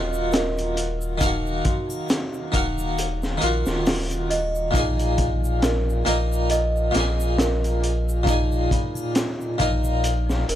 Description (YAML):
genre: trip hop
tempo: 68 BPM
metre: 4/4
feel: swing 56% on 16ths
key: Eb minor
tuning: A4 = 440 Hz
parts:
  - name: harpsichord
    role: accompaniment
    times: 0.0-10.4 s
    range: Bb2 to F5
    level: -25 LUFS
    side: left 1 dB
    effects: tremolo, tape echo
  - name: celesta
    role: arpeggios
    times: 0.0-10.6 s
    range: Eb4 to Eb5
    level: -29 LUFS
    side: right 2 dB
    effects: tape echo
  - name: warm sub bass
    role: bass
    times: 0.0-10.6 s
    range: Eb1 to Bb1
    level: -25 LUFS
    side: equal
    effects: none
  - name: egg shaker and triangle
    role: percussion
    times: 0.1-10.4 s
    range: none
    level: -42 LUFS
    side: left 1 dB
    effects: none
  - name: crunchy breakbeat drum kit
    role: drums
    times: 0.3-10.6 s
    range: hi-hat, kick drum, snare drum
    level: -25 LUFS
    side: equal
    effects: none
room: studio reverb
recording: dry, gritty hardware recording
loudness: -20 LUFS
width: side -12 dB against mid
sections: 0.0-10.6 A section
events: none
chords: 0.0 Ebmadd9; 4.7 Bb7sus4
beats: 0.33 | 1.22 2.10 2.98 3.86 | 4.75 5.63 6.51 7.39 | 8.28 9.16 10.04